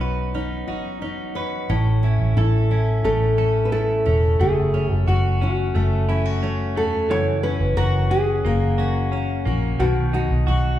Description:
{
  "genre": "acoustic pop",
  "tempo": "89 BPM",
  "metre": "4/4",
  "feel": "straight",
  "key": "unclear",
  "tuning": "A4 = 441 Hz",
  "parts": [
    { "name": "fingerpicked steel-string acoustic guitar", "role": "accompaniment", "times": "0.0-10.8 s", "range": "F#2 to C#5", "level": "-26 LUFS", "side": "left 3 dB", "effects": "none" },
    { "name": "direct-recorded clean electric guitar", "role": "arpeggios", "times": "0.0-10.8 s", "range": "D#3 to B4", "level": "-28 LUFS", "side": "right 3 dB", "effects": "none" },
    { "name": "vintage muted fingered electric bass", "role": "bass", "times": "0.0-10.8 s", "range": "E1 to B1", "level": "-21 LUFS", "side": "equal", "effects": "none" },
    { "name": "nylon-string guitar", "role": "melody", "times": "2.4-10.8 s", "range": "E4 to C#5", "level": "-23 LUFS", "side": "equal", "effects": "none" }
  ],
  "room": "wet large studio reverb, RT60 1.3 s",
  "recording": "band playing live in one room",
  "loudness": "-18 LUFS",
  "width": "side -12 dB against mid",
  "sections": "0.0-1.7 A section; 1.7-10.8 B section",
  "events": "none",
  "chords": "0.0 Badd9; 1.7 A; 4.4 F#m; 7.1 F#7; 9.8 B",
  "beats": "0.35 1.02 | 1.70 2.37 3.05 3.72 | 4.40 5.07 5.75 6.42 | 7.10 7.77 8.45 9.12 | 9.80 10.47"
}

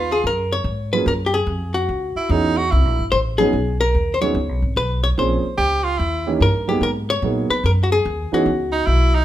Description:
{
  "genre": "jazz, small-group swing and bop",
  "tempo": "146 BPM",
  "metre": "4/4",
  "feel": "swing 65% on 8ths",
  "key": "F# major",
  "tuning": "A4 = 444 Hz",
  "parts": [
    { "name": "archtop guitar, miked and amplified", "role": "melody", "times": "0.0-9.2 s", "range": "F#4 to C#5", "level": "-21 LUFS", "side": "left 3 dB", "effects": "none" },
    { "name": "edgy tenor saxophone", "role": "second line", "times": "0.0-3.1, 5.6-9.2 s", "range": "D#4 to G4", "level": "-21 LUFS", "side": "right 3 dB", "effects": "none" },
    { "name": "upright bass", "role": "bass", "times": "0.0-9.2 s", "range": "G1 to A#2", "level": "-21 LUFS", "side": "equal", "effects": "none" },
    { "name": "warm baby grand piano", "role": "accompaniment", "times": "0.9-8.5 s", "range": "E3 to G#4", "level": "-22 LUFS", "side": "right 4 dB", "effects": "none" }
  ],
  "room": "moderate large studio reverb, RT60 1.0 s",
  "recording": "minimal, uncompressed stereo recording",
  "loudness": "-17 LUFS",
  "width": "side -12 dB against mid",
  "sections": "0.3-9.2 A section",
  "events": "none",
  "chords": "0.3 F#maj7sus2; 1.9 C#m9; 2.7 C5; 3.5 B69; 5.2 A#m7; 6.0 D#7b9; 6.8 G#m9; 8.5 Badd9",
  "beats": "| 0.26 0.67 1.08 1.49 | 1.90 2.31 2.72 3.13 | 3.54 3.95 4.36 4.77 | 5.18 5.59 6.00 6.41 | 6.82 7.23 7.64 8.05 | 8.46 8.87"
}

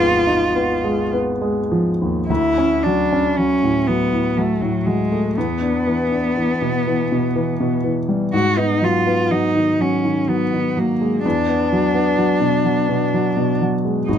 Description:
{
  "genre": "classical, impressionist duo for cello and grand piano",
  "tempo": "50-65 BPM",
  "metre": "3/4",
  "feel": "rubato",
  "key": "unclear",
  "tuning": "A4 = 440 Hz",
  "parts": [
    { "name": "rich cello", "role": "melody", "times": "0.0-14.2 s", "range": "F#3 to F#4", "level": "-19 LUFS", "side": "left 1 dB", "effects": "none" },
    { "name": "clear grand piano", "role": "accompaniment", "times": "0.0-14.2 s", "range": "G#1 to D#4", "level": "-19 LUFS", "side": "equal", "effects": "none" }
  ],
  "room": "little or no reverb",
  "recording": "close, detailed microphones",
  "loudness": "-16 LUFS",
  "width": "side -9 dB against mid",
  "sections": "0.0-2.3 A section; 2.3-14.2 B section",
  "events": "none",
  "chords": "0.0 G#m6; 2.3 Dmaj7; 5.4 E7(no3); 8.3 G#m7; 11.2 E7sus2",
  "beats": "1.12 | 2.29 3.37 4.36 | 5.36 6.37 7.36 | 8.33 9.30 10.28 | 11.25 12.18 13.12 | 14.08"
}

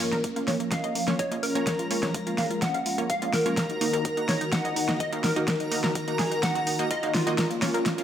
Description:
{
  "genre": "progressive house",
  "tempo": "126 BPM",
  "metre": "4/4",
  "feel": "straight",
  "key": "Bb minor",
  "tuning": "A4 = 440 Hz",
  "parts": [
    { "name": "plucky unison lead", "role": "melody", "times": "0.0-8.0 s", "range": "F4 to Gb5", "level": "-30 LUFS", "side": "equal", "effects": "phaser, digital delay" },
    { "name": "warm analog pad", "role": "sustained chords", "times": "0.0-8.0 s", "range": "Eb3 to Bb4", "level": "-33 LUFS", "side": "equal", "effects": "chorus, sidechain pumping" },
    { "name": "analog pluck", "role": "arpeggios", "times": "0.0-8.0 s", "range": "Bb3 to F5", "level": "-33 LUFS", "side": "left 1 dB", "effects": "chorus, phaser, sidechain pumping, dub echo" },
    { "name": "wide unison pluck", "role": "stabs", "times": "0.0-8.0 s", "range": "F3 to Gb5", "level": "-33 LUFS", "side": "right 3 dB", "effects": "sidechain pumping" },
    { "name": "plucky analog bass", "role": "bass", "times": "0.0-8.0 s", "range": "Eb1 to Bb2", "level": "-41 LUFS", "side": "equal", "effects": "none" },
    { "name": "deep house drum kit", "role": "drums", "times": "0.0-8.0 s", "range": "hi-hat, snare drum", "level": "-29 LUFS", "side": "equal", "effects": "studio reverb" },
    { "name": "backwards swelling texture", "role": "texture", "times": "0.9-8.0 s", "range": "Bb5", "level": "-38 LUFS", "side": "equal", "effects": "built-in reverb, sidechain pumping" },
    { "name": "electronic kick drum", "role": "drums", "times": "0.2-8.0 s", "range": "none", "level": "-37 LUFS", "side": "left 1 dB", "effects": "high-pass filter on kick, studio reverb" },
    { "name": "riser", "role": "sound effects", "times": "7.4-8.0 s", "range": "none", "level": "-43 LUFS", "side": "equal", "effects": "none" }
  ],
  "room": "moderate lush hall reverb, RT60 2.0 s",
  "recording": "none",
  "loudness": "-24 LUFS",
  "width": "side -9 dB against mid",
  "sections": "0.0-8.0 A section",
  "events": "build-up 0.0-8.0; drum fill 0.0-8.0",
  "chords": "0.0 Bbm; 3.6 Ebm; 7.4 Bbm",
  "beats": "0.24 0.72 1.19 | 1.67 2.14 2.62 3.10 | 3.57 4.05 4.53 5.00 | 5.48 5.95 6.43 6.91 | 7.38 7.86"
}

